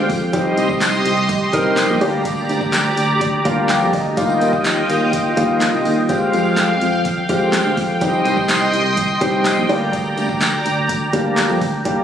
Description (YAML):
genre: dance-pop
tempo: 125 BPM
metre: 4/4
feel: straight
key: unclear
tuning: A4 = 440 Hz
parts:
  - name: warm baby grand piano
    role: accompaniment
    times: 0.0-12.0 s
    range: G3 to Bb5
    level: -19 LUFS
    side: equal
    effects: sidechain pumping
  - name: filtered supersaw swell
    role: sustained chords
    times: 0.0-12.0 s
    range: F4 to C6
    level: -20 LUFS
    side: equal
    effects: sidechain pumping
  - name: sustaining fretless electric bass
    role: bass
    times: 0.0-11.8 s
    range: Bb1 to F2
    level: -22 LUFS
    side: equal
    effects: analog chorus, sidechain pumping
  - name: deep house drum kit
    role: drums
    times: 0.1-12.0 s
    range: handclaps, hi-hat, kick drum, snare drum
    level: -23 LUFS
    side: equal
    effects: none
  - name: tambourine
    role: percussion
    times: 0.1-11.7 s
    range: none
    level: -35 LUFS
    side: left 2 dB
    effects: none
room: light reverb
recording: recorded on a phone in the room, studio reverb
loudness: -15 LUFS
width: side -9 dB against mid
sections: 0.0-11.9 A section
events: grand piano fill 3.2-4.2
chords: 0.3 Cm; 2.0 Gm/D; 4.2 Ebadd9; 6.1 Fmadd9; 8.0 Cm; 9.7 Gm/D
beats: | 0.33 0.81 1.29 1.77 | 2.25 2.73 3.21 3.69 | 4.17 4.65 5.13 5.61 | 6.09 6.57 7.05 7.53 | 8.01 8.49 8.97 9.45 | 9.93 10.41 10.89 11.37 | 11.85